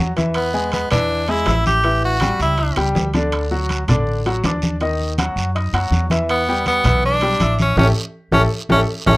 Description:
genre	latin, salsa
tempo	162 BPM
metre	4/4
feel	straight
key	unclear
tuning	A4 = 440 Hz
part	clear concert grand piano	accompaniment	0.0-9.2 s	D3 to E6	-22 LUFS	left 1 dB	none
part	upright bass	bass	0.0-9.2 s	A1 to Gb2	-21 LUFS	equal	none
part	congas	percussion	0.2-9.2 s	none	-21 LUFS	equal	none
part	guiro	percussion	0.2-9.2 s	none	-32 LUFS	right 3 dB	none
part	timbales	percussion	0.2-9.2 s	none	-27 LUFS	right 3 dB	none
part	edgy tenor saxophone	melody	0.4-2.8, 6.3-9.2 s	B3 to G4	-18 LUFS	equal	none
room	light reverb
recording	rough home demo mix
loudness	-15 LUFS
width	side -21 dB against mid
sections	0.0-9.2 A section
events	band accent 7.8-9.2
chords	0.4 E7; 1.8 A7; 3.3 D; 4.8 Ebm; 6.3 Em7; 7.8 A7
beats	| 0.36 0.73 1.10 1.47 | 1.84 2.21 2.59 2.96 | 3.33 3.70 4.07 4.44 | 4.81 5.18 5.55 5.92 | 6.29 6.66 7.03 7.40 | 7.77 8.14 8.51 8.88

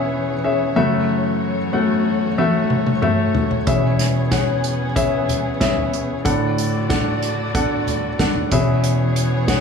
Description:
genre	piano-driven pop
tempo	93 BPM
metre	4/4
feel	straight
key	unclear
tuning	A4 = 441 Hz
part	warm grand piano	accompaniment	0.0-9.6 s	D2 to F#5	-18 LUFS	left 2 dB	none
part	dark studio string section	sustained chords	0.0-9.6 s	D3 to D5	-26 LUFS	equal	none
part	unplugged drum kit	drums	2.4-9.6 s	hi-hat, kick drum, snare drum, toms	-22 LUFS	equal	none
room	moderate large studio reverb, RT60 0.9 s, small room ambience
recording	small room reverb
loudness	-17 LUFS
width	side -6 dB against mid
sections	0.0-9.6 A section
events	drum fill 2.4-3.7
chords	0.0 E6; 0.8 F#m7; 3.7 E6; 6.3 D; 8.5 E6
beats	0.44 | 1.09 1.74 2.38 3.03 | 3.67 4.32 4.97 5.61 | 6.26 6.90 7.55 8.19 | 8.84 9.48

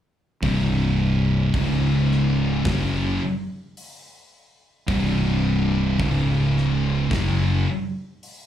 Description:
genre	stoner and doom metal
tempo	54 BPM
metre	4/4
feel	straight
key	unclear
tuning	A4 = 440 Hz
part	thick fuzz guitar	riff	0.4-7.7 s	C2 to F#3	-25 LUFS	left 7 dB	distortion
part	thick fuzz guitar	riff	0.4-7.7 s	C2 to F#3	-25 LUFS	right 5 dB	distortion
part	thick fuzz guitar	riff	0.4-7.7 s	C2 to F#3	-25 LUFS	right 1 dB	distortion
part	fuzz fingered electric bass	bass	0.4-7.6 s	C1 to F#1	-25 LUFS	equal	overdrive
part	big rock drum kit	drums	0.4-8.5 s	hi-hat, kick drum, snare drum	-31 LUFS	equal	none
room	light reverb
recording	live gig heard through the venue's PA, club reverb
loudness	-19 LUFS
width	side -10 dB against mid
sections	0.4-8.5 A section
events	none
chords	0.4 C5; 1.5 Db5; 2.7 C5; 6.0 Db5; 7.1 F#5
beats	| 0.43 1.54 2.66 3.77 | 4.89 6.00 7.12 8.23

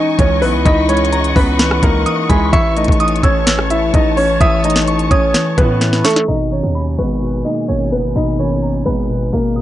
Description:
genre	hip hop, trap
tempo	128 BPM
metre	4/4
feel	half-time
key	unclear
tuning	A4 = 440 Hz
part	warm concert grand piano	melody	0.0-9.6 s	G#3 to E5	-17 LUFS	right 1 dB	low-pass filter
part	soft electric-piano-like synth keys	accompaniment	0.0-9.6 s	B2 to E5	-19 LUFS	left 2 dB	chorus, low-pass filter
part	dark symphonic string section	sustained chords	0.0-9.6 s	E3 to C#6	-24 LUFS	left 4 dB	none
part	distorted 808-style bass	bass	0.2-9.6 s	F#1 to A2	-19 LUFS	equal	distortion, transformer saturation
part	trap drum kit	drums	0.2-6.3 s	hi-hat, kick drum, rim click, snare drum	-15 LUFS	equal	none
part	glassy synth bell	second line	0.7-9.6 s	A#5 to E6	-23 LUFS	right 1 dB	chorus, tremolo, tape echo
room	little or no reverb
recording	dry, gritty hardware recording, cassette tape, low-pass filter, nothing above 10.8 kHz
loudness	-12 LUFS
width	side -13 dB against mid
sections	0.0-6.3 A section; 6.3-9.6 B section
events	drum fill 5.8-6.3; filter sweep 6.3-9.6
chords	0.0 C#madd9; 2.5 A; 6.3 F# (rootless)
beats	0.19 | 0.66 1.12 1.59 2.06 | 2.53 3.00 3.47 3.94 | 4.41 4.88 5.34 5.81 | 6.28 6.75 7.22 7.69 | 8.16 8.62 9.09 9.56

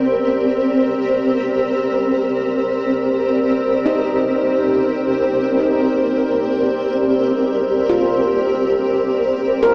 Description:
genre	ambient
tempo	52 BPM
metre	4/4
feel	straight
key	C minor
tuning	A4 = 441 Hz
part	granular cloud pad	sustained chords	0.0-9.7 s	C4 to D5	-18 LUFS	equal	built-in reverb
part	handpan	arpeggios	3.9-9.7 s	Eb4 to Bb4	-25 LUFS	equal	diffuse ambient delay
room	wet cathedral reverb, RT60 5.4 s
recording	small speaker sound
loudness	-18 LUFS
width	mono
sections	0.0-9.7 A section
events	none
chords	0.0 Cm9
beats	0.98 | 2.13 3.29 4.44 5.59 | 6.75 7.90 9.05

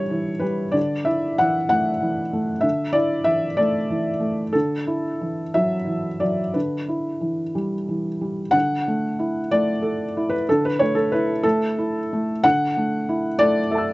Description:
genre	neoclassical minimalist piano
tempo	59-64 BPM (dotted quarters)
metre	6/8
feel	rubato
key	unclear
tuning	A4 = 440 Hz
part	felt-muted upright piano	solo	0.0-13.9 s	D3 to E6	-20 LUFS	equal	slapback echo
room	little or no reverb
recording	recorded outdoors, with no room sound, nothing above 7.8 kHz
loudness	-20 LUFS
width	side -20 dB against mid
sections	0.0-8.5 A section; 8.5-13.9 B section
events	none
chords	0.0 Em/D; 0.8 Asus4/D; 6.5 Em/D; 8.5 Asus4/D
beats	| 0.76 1.70 | 2.64 3.58 | 4.54 5.54 | 6.54 7.55 | 8.54 9.51 | 10.47 11.44 | 12.44 13.40

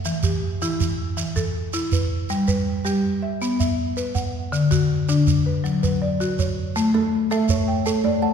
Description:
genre	southern african traditional, mbira-style interlocking cycle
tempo	108 BPM (dotted quarters)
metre	12/8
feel	straight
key	A mixolydian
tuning	A4 = 440 Hz
part	buzzing marimba with medium mallets	arpeggios	0.0-8.3 s	D3 to A5	-21 LUFS	left 2 dB	none
part	shekere	percussion	0.1-8.0 s	none	-25 LUFS	right 4 dB	none
part	kalimba	arpeggios	6.9-8.3 s	A3 to F#5	-24 LUFS	right 4 dB	none
room	wet concert hall reverb, RT60 1.7 s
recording	recorded in a church or concert hall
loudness	-20 LUFS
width	side -7 dB against mid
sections	0.0-6.8 A section; 6.8-8.3 A section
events	none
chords	0.1 Em; 2.3 G; 3.4 B5; 4.5 D; 5.7 F#5; 6.8 A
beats	| 0.06 0.62 1.18 1.74 | 2.30 2.86 3.42 3.98 | 4.54 5.09 5.65 6.21 | 6.76 7.31 7.87

